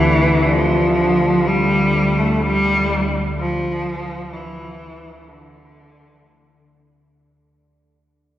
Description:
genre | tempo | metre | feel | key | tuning
dark ambient drone | free time | none | none | unclear | A4 = 440 Hz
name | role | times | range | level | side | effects
bright cello | melody | 0.0-6.7 s | D3 to A3 | -17 LUFS | equal | diffuse ambient delay
rich studio cello section | sustained chords | 0.0-7.2 s | G3 to E4 | -31 LUFS | left 1 dB | none
organ-like drone | drone | 0.0-7.3 s | D2 to D3 | -21 LUFS | left 1 dB | ensemble chorus, built-in reverb
bronze singing bowl | texture | 0.0-7.2 s | G4 | -33 LUFS | right 1 dB | none
room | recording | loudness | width
wet cathedral reverb, RT60 5.0 s | worn, warbling old tape, cassette tape, warbly pitch drift | -15 LUFS | side -12 dB against mid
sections
0.0-7.1 A section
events
fade-out 0.0-7.1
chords
0.0 Gsus4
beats
free time

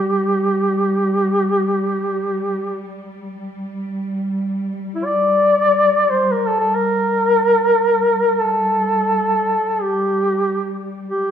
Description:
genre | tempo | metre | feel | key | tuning
caucasian folk, Caucasian lament | free time | none | none | G minor | A4 = 440 Hz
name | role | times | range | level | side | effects
warm duduk | melody | 0.0-11.3 s | E4 to D5 | -16 LUFS | equal | none
dark symphonic cello section | drone | 0.0-11.3 s | G3 | -24 LUFS | equal | none
room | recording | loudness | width
moderate concert hall reverb, RT60 2.0 s | minimal, uncompressed stereo recording | -16 LUFS | side -8 dB against mid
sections
0.0-11.3 A section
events
none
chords
none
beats
free time

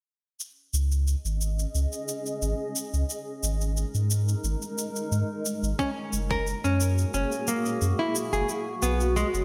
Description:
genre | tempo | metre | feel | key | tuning
organic downtempo | 89 BPM | 4/4 | straight | unclear | A4 = 439 Hz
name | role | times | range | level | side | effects
granular cloud pad | sustained chords | 1.4-9.4 s | G#3 to D#5 | -35 LUFS | equal | built-in reverb, lush chorus, sidechain pumping
shaker | drums | 0.4-9.4 s | none | -37 LUFS | equal | overdrive
warm sub bass | bass | 0.7-9.4 s | F#1 to G#2 | -28 LUFS | equal | none
nylon-string guitar | arpeggios | 5.8-9.3 s | G#3 to A#4 | -30 LUFS | equal | digital delay
electronic kick drum | drums | 5.8-6.4 s | none | -34 LUFS | equal | none
room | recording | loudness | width
moderate lush hall reverb, RT60 2.1 s | bright 1980s-style digital production | -28 LUFS | mono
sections
0.4-9.4 A section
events
filter sweep on sub bass 0.4-9.4; filter sweep on ambient pad 0.4-9.4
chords
0.4 C#5; 3.1 G#5; 5.8 F#add9; 8.5 B5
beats
| 0.40 1.07 1.75 2.42 | 3.10 3.77 4.44 5.12 | 5.79 6.47 7.14 7.82 | 8.49 9.16

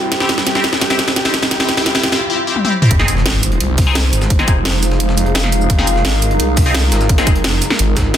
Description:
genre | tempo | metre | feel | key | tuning
dark technical drum and bass | 172 BPM | 4/4 | straight | unclear | A4 = 439 Hz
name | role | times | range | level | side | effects
dark analog pad | sustained chords | 0.0-8.2 s | G3 to C5 | -24 LUFS | right 2 dB | chorus, sidechain pumping
snarling distorted saw bass | bass | 0.0-8.1 s | F1 to C2 | -18 LUFS | equal | distortion, overdrive, sidechain pumping, high-pass filter
riser and impact | sound effects | 0.0-4.3 s | none | -24 LUFS | equal | none
warbly tape-like pad | texture | 0.0-8.2 s | Eb4 to G5 | -24 LUFS | equal | chorus, built-in reverb, phaser, sidechain pumping
felt-muted upright piano | arpeggios | 0.1-2.1 s | G4 | -25 LUFS | equal | sidechain pumping, dub echo
drum and bass drum kit | drums | 0.1-8.2 s | cabasa, hi-hat, snare drum, toms | -16 LUFS | equal | overdrive, small room ambience
band-passed chord stab | stabs | 0.2-7.3 s | C4 to Ab4 | -21 LUFS | left 2 dB | phaser, dub echo
breakbeat sampler-style drum kit | drums | 2.9-8.2 s | hi-hat, snare drum | -27 LUFS | equal | none
electronic kick drum | drums | 2.9-8.0 s | none | -14 LUFS | equal | overdrive, small room ambience
room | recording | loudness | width
light reverb, digital ambience | dense, heavily limited modern master | -12 LUFS | side -10 dB against mid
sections
0.0-2.9 A section; 2.9-8.2 B section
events
build-up 0.0-2.9; drum fill 0.0-2.2, 2.6-2.9; riser 0.0-2.2; drop 2.9-8.2; impact 2.9-4.3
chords
0.0 C; 2.9 Fm7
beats
| 0.12 0.47 0.81 1.16 | 1.51 1.86 2.21 2.56 | 2.91 3.26 3.60 3.95 | 4.30 4.65 5.00 5.35 | 5.70 6.05 6.40 6.75 | 7.09 7.44 7.79 8.14

